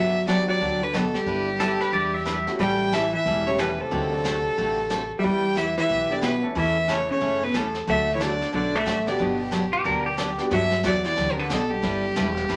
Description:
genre	country, western swing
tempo	182 BPM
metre	4/4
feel	swing 62% on 8ths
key	G major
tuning	A4 = 439 Hz
part	clear fiddle	melody	0.0-12.6 s	G4 to G5	-28 LUFS	equal	none
part	vintage hollow-body jazz guitar	second line	0.0-12.6 s	G2 to A3	-29 LUFS	equal	none
part	picked steel-string acoustic guitar	accompaniment	0.0-12.6 s	D3 to B4	-32 LUFS	equal	none
part	upright bass	bass	0.0-12.6 s	E1 to G2	-36 LUFS	equal	none
part	warm upright piano	accompaniment	0.3-10.5 s	E3 to A4	-34 LUFS	equal	none
part	jazz brush drum kit	drums	0.3-12.6 s	brushed snare drum, hi-hat, snare drum	-37 LUFS	equal	none
part	pedal steel guitar	second line	1.6-2.5, 9.7-10.4 s	G4 to E5	-27 LUFS	equal	none
room	wet studio reverb, RT60 0.6 s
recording	none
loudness	-24 LUFS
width	mono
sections	0.0-10.5 A section; 10.5-12.6 A section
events	none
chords	0.0 Gmaj7; 1.3 Em7/G; 2.6 A7; 3.9 D7; 5.2 Em; 6.6 A/E; 7.9 D; 9.2 Gmaj7; 11.8 Em7

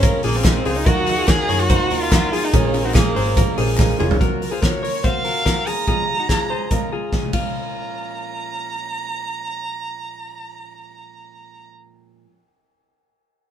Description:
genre	jangly indie pop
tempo	144 BPM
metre	4/4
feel	straight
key	Bb minor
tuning	A4 = 437 Hz
part	warm violin	melody	0.0-11.7 s	Bb3 to Bb5	-24 LUFS	right 2 dB	none
part	fingerpicked steel-string acoustic guitar	accompaniment	0.0-12.4 s	Bb2 to F4	-29 LUFS	right 7 dB	none
part	warm upright piano	accompaniment	0.0-4.2 s	Db4 to Db5	-27 LUFS	right 5 dB	none
part	direct-recorded clean electric guitar	arpeggios	0.0-8.8 s	Eb4 to Db5	-25 LUFS	left 5 dB	none
part	vintage muted fingered electric bass	bass	0.0-4.2 s	F1 to Eb3	-24 LUFS	equal	none
part	loose indie drum kit	drums	0.0-7.4 s	hi-hat, kick drum, ride cymbal, snare drum, toms	-19 LUFS	equal	none
part	group handclap	percussion	0.4-3.9 s	none	-32 LUFS	left 3 dB	none
room	wet studio ambience, RT60 0.5 s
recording	band playing live in one room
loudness	-17 LUFS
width	side -9 dB against mid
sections	0.0-4.2 A section; 4.2-7.5 B section; 7.5-10.9 C section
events	drum fill 3.8-4.2, 7.1-7.5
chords	0.0 Bbm7; 0.9 Ebmadd9; 2.5 Bbm7; 4.2 Gbmaj7; 5.9 Bbm7

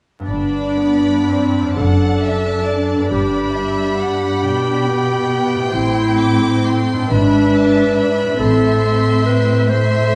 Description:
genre	classical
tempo	39-48 BPM (dotted quarters)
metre	6/8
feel	rubato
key	G major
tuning	A4 = 436 Hz
part	concert harp	arpeggios	0.2-10.2 s	F#2 to D5	-26 LUFS	equal	none
part	warm studio violin section	melody	0.3-10.2 s	A5 to D6	-30 LUFS	equal	none
part	mellow clarinet	second line	0.3-10.2 s	D4 to C5	-21 LUFS	equal	none
part	rich chamber violin section	second line	0.3-10.2 s	D5 to G5	-27 LUFS	equal	none
part	warm studio viola section	accompaniment	0.3-10.2 s	A3 to D4	-23 LUFS	equal	none
part	clear symphonic double bass section	bass	0.3-9.2 s	F#1 to A1	-24 LUFS	equal	none
part	warm chamber cello section	bass	0.3-10.2 s	F#2 to B2	-23 LUFS	equal	none
room	wet scoring stage reverb, RT60 1.6 s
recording	vinyl crackle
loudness	-16 LUFS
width	mono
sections	0.3-10.2 A section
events	none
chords	0.3 G; 1.8 D7/F#; 3.1 G; 5.7 Am7; 7.1 E7/G#; 8.4 Am

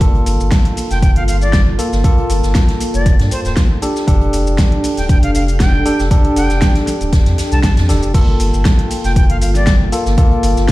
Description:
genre	deep house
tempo	118 BPM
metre	4/4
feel	swing 53% on 16ths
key	G minor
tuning	A4 = 441 Hz
part	bright tine electric piano	stabs	0.0-10.7 s	Bb3 to A4	-20 LUFS	equal	vintage 12-bit sampler grit, sidechain pumping, ping-pong delay
part	sub bass with octave	bass	0.0-10.7 s	D1 to G2	-16 LUFS	equal	sidechain pumping
part	deep house drum kit	drums	0.0-10.7 s	crash cymbal, hi-hat, shaker, snare drum	-22 LUFS	equal	none
part	electronic kick drum	drums	0.0-10.7 s	none	-12 LUFS	equal	none
part	swinging big-band drum kit	drums	0.0-10.7 s	hi-hat, snare drum	-32 LUFS	right 1 dB	sidechain pumping on hats, high-pass filter on hats, high-pass filter on snare, high-pass filter on room
part	warbly tape-like pad	texture	0.8-10.7 s	Bb3 to G5	-25 LUFS	equal	chorus, built-in reverb, phaser, sidechain pumping
part	bright reedy jazz flute	melody	0.9-9.7 s	C5 to A5	-24 LUFS	equal	ping-pong delay
room	studio ambience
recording	played on a big sound system in a bare room, large studio reverb, vinyl crackle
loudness	-11 LUFS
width	side -18 dB against mid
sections	0.0-8.1 A section; 8.1-10.7 B section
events	drop 8.1-10.7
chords	0.0 Gm7; 3.8 F69; 8.1 Gm7

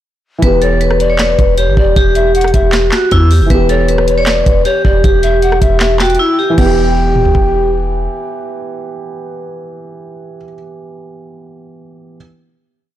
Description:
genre	hip hop, trap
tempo	156 BPM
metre	4/4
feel	half-time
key	E dorian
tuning	A4 = 440 Hz
part	vibraphone with medium hard mallets	melody	0.4-7.7 s	E4 to C#5	-14 LUFS	left 1 dB	digital delay
part	dark concert grand piano	accompaniment	0.4-12.2 s	E3 to G4	-20 LUFS	right 3 dB	none
part	warm 808-style bass	bass	0.4-8.1 s	E1 to E2	-14 LUFS	equal	none
part	trap drum kit	drums	0.4-7.4 s	crash cymbal, handclaps, hi-hat, kick drum, rim click, snare drum, toms	-15 LUFS	equal	none
part	mellow hollow pan flute	second line	0.6-7.7 s	C#5 to G5	-18 LUFS	left 3 dB	digital delay
room	studio reverb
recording	blown-out, overdriven recording, overdrive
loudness	-9 LUFS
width	side -12 dB against mid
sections	0.4-6.6 hook; 6.6-9.7 final chord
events	silent gap 6.2-6.6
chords	0.4 Em

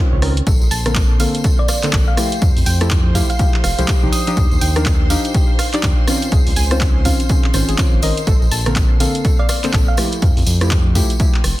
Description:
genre	deep house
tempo	123 BPM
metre	4/4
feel	swing 60% on 16ths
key	Bb major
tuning	A4 = 440 Hz
part	soft round pluck	arpeggios	0.0-9.8 s	G4 to A5	-28 LUFS	equal	chorus, sidechain pumping, analog delay
part	deep mellow chord stab	stabs	0.0-11.4 s	D3 to Bb4	-22 LUFS	equal	chorus, sidechain pumping, analog delay
part	round analog bass	bass	0.1-11.5 s	F1 to F2	-18 LUFS	equal	sidechain pumping
part	punchy analog drum machine	drums	0.2-11.6 s	handclaps, hi-hat, rim click	-24 LUFS	right 1 dB	soft clipping on snare
part	electronic kick drum	drums	0.5-11.3 s	none	-16 LUFS	equal	none
part	tambourine	percussion	0.5-11.6 s	none	-27 LUFS	left 2 dB	none
part	string machine, violins	texture	0.5-11.6 s	C5 to C6	-32 LUFS	right 1 dB	ensemble chorus, sidechain pumping
part	thumb-piano-like synth pluck	melody	1.6-4.3, 9.4-10.1 s	D5 to Eb6	-26 LUFS	equal	chorus, vintage 12-bit sampler grit, analog delay
room	digital ambience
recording	dense, heavily limited modern master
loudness	-13 LUFS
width	side -16 dB against mid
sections	0.0-11.6 A section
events	none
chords	0.5 Bbmaj9; 2.4 Fmaj9; 4.1 Ebmaj9; 6.3 Dbmaj9; 8.3 Bbmaj9; 10.2 Fmaj9

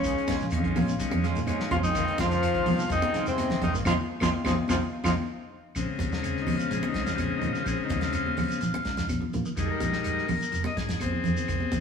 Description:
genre	afrobeat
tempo	126 BPM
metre	4/4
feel	straight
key	Bb dorian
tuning	A4 = 440 Hz
part	clear tenor saxophone	melody	0.0-5.1 s	C4 to F4	-29 LUFS	equal	none
part	bright trombone section	second line	0.0-5.1 s	C3 to F3	-33 LUFS	left 5 dB	none
part	bright trumpet	second line	0.0-5.1 s	Ab4 to Db5	-41 LUFS	right 3 dB	none
part	semi-hollow electric guitar	arpeggios	0.0-11.8 s	C3 to Ab3	-36 LUFS	left 3 dB	phaser, slapback echo
part	fingered electric bass	bass	0.0-11.8 s	F1 to Bb2	-31 LUFS	right 1 dB	none
part	damped 70s drum kit	drums	0.0-11.8 s	hi-hat, kick drum, snare drum	-35 LUFS	equal	none
part	claves	percussion	0.0-11.6 s	none	-44 LUFS	right 1 dB	none
part	shekere	percussion	0.0-11.8 s	none	-40 LUFS	right 4 dB	none
part	combo organ	accompaniment	0.1-11.8 s	Db3 to Eb5	-31 LUFS	left 4 dB	spring reverb
part	electric guitar at the edge of break-up	stabs	0.3-5.1 s	Eb3 to F4	-34 LUFS	right 2 dB	spring reverb
part	congas	percussion	0.3-11.8 s	none	-32 LUFS	right 1 dB	none
room	wet stone room reverb, RT60 1.4 s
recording	rough rehearsal-room recording, small room ambience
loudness	-25 LUFS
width	side -6 dB against mid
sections	0.0-5.8 A section; 5.8-11.8 B section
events	band accent 3.9-5.8; transistor combo organ solo 5.8-11.8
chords	0.0 Bbm7; 1.9 Fm7; 5.8 Bbm7; 9.6 Fm7

